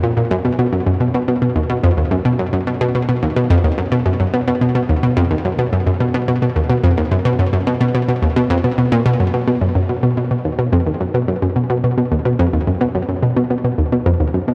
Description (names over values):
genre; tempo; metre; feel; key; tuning
ambient; 108 BPM; 4/4; straight; B lydian; A4 = 441 Hz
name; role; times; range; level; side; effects
analog pluck; solo; 0.0-14.5 s; D#2 to B2; -17 LUFS; equal; chorus, delay
room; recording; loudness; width
wet huge ambient reverb, RT60 8.3 s; none; -17 LUFS; mono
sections
0.0-9.5 A section; 9.5-14.5 B section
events
none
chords
none